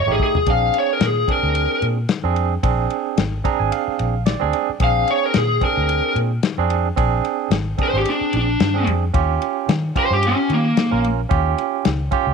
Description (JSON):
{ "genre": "straight-eighth soul blues", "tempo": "111 BPM", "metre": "4/4", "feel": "swing 55% on 16ths", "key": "Bb mixolydian", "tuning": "A4 = 440 Hz", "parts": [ { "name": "lead guitar through a small cranked amp", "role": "melody", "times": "0.0-11.0 s", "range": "Bb3 to F5", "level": "-19 LUFS", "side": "left 2 dB", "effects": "overdrive" }, { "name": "barky tine electric piano", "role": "accompaniment", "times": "0.1-12.3 s", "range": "A3 to Bb5", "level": "-22 LUFS", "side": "right 16 dB", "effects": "overdrive, medium stereo tremolo" }, { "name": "vintage muted fingered electric bass", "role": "bass", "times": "0.1-12.3 s", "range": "Ab1 to Eb3", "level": "-22 LUFS", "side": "left 1 dB", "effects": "none" }, { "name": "warm soul drum kit", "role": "drums", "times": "0.2-12.3 s", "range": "kick drum, ride cymbal, snare drum, toms", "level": "-21 LUFS", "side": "left 4 dB", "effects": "none" } ], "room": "light reverb, small room ambience", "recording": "1960s-style stereo", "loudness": "-17 LUFS", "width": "side -5 dB against mid", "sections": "0.5-12.3 A section", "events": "drum fill 0.0-0.5; lead electric guitar solo 0.5-12.3; tine electric piano fill 3.2-4.8", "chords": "0.5 Bb9; 9.1 Eb9", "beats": "| 0.47 1.01 1.56 2.10 | 2.64 3.18 3.73 4.27 | 4.81 5.35 5.89 6.44 | 6.98 7.52 8.06 8.60 | 9.14 9.68 10.22 10.77 | 11.31 11.85" }